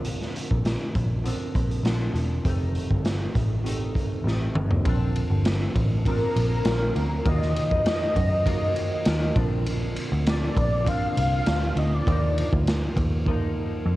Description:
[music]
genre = indie pop, bedroom pop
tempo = 100 BPM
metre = 4/4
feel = straight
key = Bb major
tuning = A4 = 440 Hz
[part]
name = mellow tine electric piano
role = accompaniment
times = 0.0-14.0 s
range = Bb3 to Bb4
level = -34 LUFS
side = right 8 dB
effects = medium stereo tremolo, cassette tape
[part]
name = semi-hollow electric guitar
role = accompaniment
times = 0.0-14.0 s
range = F2 to F4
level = -35 LUFS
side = left 6 dB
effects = analog chorus, vibrato effect, cassette tape
[part]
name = vintage muted picked electric bass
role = bass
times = 0.0-14.0 s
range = E1 to Gb2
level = -25 LUFS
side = equal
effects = none
[part]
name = raw garage drum kit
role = drums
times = 0.0-13.4 s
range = hi-hat, kick drum, ride cymbal, snare drum, toms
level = -26 LUFS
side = equal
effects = cassette tape
[part]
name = soft octave-layered synth lead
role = melody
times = 6.1-12.5 s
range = Bb4 to F5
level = -28 LUFS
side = left 1 dB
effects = ensemble chorus, analog delay
[sound]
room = little or no reverb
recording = home recording on cassette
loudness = -22 LUFS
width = side -17 dB against mid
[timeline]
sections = 0.0-4.9 A section; 4.9-14.0 B section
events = drum fill 4.3-4.9, 13.3-14.0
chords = 0.0 Bbadd9; 2.5 F7; 4.9 Bbadd9; 7.3 Ebmadd9; 9.4 Bbadd9; 12.1 Ebsus2

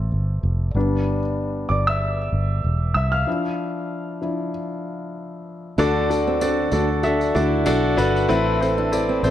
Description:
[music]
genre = piano-driven pop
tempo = 96 BPM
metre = 4/4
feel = swing 56% on 16ths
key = unclear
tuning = A4 = 440 Hz
[part]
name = warm concert grand piano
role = accompaniment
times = 0.0-9.3 s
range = A2 to F6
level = -21 LUFS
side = left 1 dB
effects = none
[part]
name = fingered electric bass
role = bass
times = 0.0-9.3 s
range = E1 to D2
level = -23 LUFS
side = equal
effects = none
[part]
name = fingerpicked steel-string acoustic guitar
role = riff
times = 5.8-9.2 s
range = C4 to E4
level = -28 LUFS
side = right 5 dB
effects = none
[part]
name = tambourine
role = percussion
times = 5.8-9.3 s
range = none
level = -40 LUFS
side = left 2 dB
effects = none
[sound]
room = moderate recital hall reverb, RT60 1.8 s, small room ambience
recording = worn, warbling old tape, cassette tape, warbly pitch drift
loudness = -19 LUFS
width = side -11 dB against mid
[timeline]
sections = 0.0-5.8 A section; 5.8-9.3 B section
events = grand piano solo 0.0-5.8; stop 3.3-5.8; grand piano fill 8.9-9.3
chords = 0.0 Am; 0.8 G; 3.3 Dmadd9; 5.8 D; 8.3 Amadd9

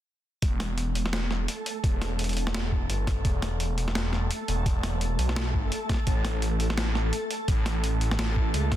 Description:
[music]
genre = half-time drum and bass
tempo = 170 BPM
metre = 4/4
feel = swing 58% on 16ths, half-time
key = unclear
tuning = A4 = 438 Hz
[part]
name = phased detuned saw bass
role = bass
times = 0.4-8.8 s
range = E1 to C#2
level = -27 LUFS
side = equal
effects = phaser, tube saturation
[part]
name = boom bap sampler-style drum kit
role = drums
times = 0.4-8.8 s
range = hi-hat, snare drum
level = -32 LUFS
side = equal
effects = soft clipping on snare
[part]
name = electronic kick drum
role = drums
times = 0.4-8.8 s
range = none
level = -26 LUFS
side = equal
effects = none
[part]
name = backwards swelling texture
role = texture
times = 1.4-8.8 s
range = A3 to A4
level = -35 LUFS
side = equal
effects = built-in reverb
[sound]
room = light reverb, digital ambience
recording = dense, heavily limited modern master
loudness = -25 LUFS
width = side -12 dB against mid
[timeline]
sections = 0.4-8.8 A section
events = none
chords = 0.4 Em; 6.1 A

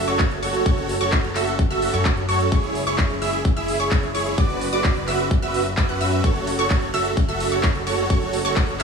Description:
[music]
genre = EDM, festival progressive house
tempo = 129 BPM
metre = 4/4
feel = straight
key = F# minor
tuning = A4 = 442 Hz
[part]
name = wide unison pluck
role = arpeggios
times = 0.0-8.8 s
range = C#6 to F#6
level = -28 LUFS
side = equal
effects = wide subtle chorus, sidechain pumping, dub echo
[part]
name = supersaw chords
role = riff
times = 0.0-8.8 s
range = E4 to F#5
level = -23 LUFS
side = right 3 dB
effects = sidechain pumping, dub echo
[part]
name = wide detuned saw bass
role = bass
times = 0.0-8.8 s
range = F#1 to F#2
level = -28 LUFS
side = left 2 dB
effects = chorus, sidechain pumping
[part]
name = big-room dance drum kit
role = drums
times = 0.1-8.8 s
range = handclaps, hi-hat, ride cymbal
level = -29 LUFS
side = left 1 dB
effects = none
[part]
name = electronic kick drum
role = drums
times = 0.2-8.7 s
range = none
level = -21 LUFS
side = equal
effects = none
[sound]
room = light reverb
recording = small room ambience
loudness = -18 LUFS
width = side -5 dB against mid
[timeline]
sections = 0.0-8.8 A section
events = none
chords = 0.0 F#m; 2.5 C#m/F#; 4.4 Bm/F#; 6.2 F#m

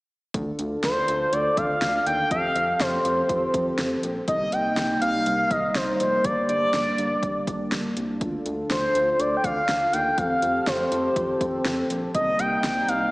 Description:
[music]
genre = synth-pop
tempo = 122 BPM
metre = 4/4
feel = straight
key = unclear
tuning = A4 = 440 Hz
[part]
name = chorused pulse-width pad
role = sustained chords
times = 0.3-13.1 s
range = C3 to A4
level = -28 LUFS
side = equal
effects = none
[part]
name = rubbery square bass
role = bass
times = 0.3-13.1 s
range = F1 to F2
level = -33 LUFS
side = equal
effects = none
[part]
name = deep house drum kit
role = drums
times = 0.3-13.0 s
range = hi-hat, kick drum, snare drum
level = -31 LUFS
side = equal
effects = overdrive
[part]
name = expressive synth lead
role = melody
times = 0.8-13.1 s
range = C5 to G5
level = -23 LUFS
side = equal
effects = chorus
[sound]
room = wet lush hall reverb, RT60 1.9 s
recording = dreamy mix soaked in reverb, small speaker sound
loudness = -21 LUFS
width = side -22 dB against mid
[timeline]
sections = 0.3-13.1 A section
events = none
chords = 0.3 Dm; 2.3 Fadd9; 4.3 Cm7; 6.2 Gm; 8.2 Dm; 10.2 Fadd9; 12.1 Cm7

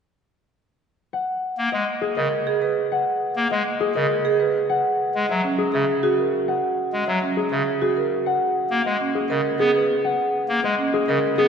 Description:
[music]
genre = classical, minimalist pattern music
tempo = 101 BPM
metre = 3/4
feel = straight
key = G# minor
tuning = A4 = 440 Hz
[part]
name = concert harp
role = melody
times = 1.1-11.5 s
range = G#4 to F#5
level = -24 LUFS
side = left 4 dB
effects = none
[part]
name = pipe organ, clarinet reed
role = accompaniment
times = 1.6-11.5 s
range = C#3 to B3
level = -25 LUFS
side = left 1 dB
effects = none
[part]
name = marimba with medium hard mallets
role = arpeggios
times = 2.2-11.5 s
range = C#4 to B4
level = -23 LUFS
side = right 6 dB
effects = none
[sound]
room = wet church reverb, RT60 3.5 s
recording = recorded in a church or concert hall, nothing above 10.5 kHz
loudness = -20 LUFS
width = side -7 dB against mid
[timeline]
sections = 1.1-11.5 A section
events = none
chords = 1.1 G#m9; 4.7 F#13; 8.3 G#m9

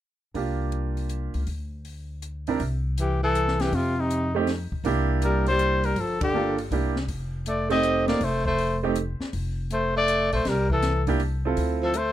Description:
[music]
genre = jazz, small-group swing and bop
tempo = 160 BPM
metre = 3/4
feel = swing 66% on 8ths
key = C mixolydian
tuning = A4 = 440 Hz
[part]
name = clear baby grand piano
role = accompaniment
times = 0.3-9.0, 11.1-11.9 s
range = C3 to Bb4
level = -27 LUFS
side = right 6 dB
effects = none
[part]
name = upright bass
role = bass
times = 0.3-12.1 s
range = F1 to F2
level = -28 LUFS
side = left 1 dB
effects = none
[part]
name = compact cocktail drum kit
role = drums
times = 0.3-12.1 s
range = hi-hat, kick drum, ride cymbal, snare drum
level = -34 LUFS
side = left 2 dB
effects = none
[part]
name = breathy trumpet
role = melody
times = 3.0-12.1 s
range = Eb4 to Eb5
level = -26 LUFS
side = left 3 dB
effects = plate reverb
[part]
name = warm tenor saxophone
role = second line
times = 3.0-12.1 s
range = C3 to C4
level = -27 LUFS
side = right 1 dB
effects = none
[sound]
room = light reverb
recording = none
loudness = -22 LUFS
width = side -12 dB against mid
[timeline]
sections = 0.4-2.6 A section; 2.6-12.1 B section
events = band accent 6.2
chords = 0.4 C9sus4; 1.5 N.C.; 2.6 C; 3.7 F7(no3); 4.8 C9; 6.0 Gm7; 6.7 C9; 7.1 F9; 10.5 C7; 11.6 Dm7

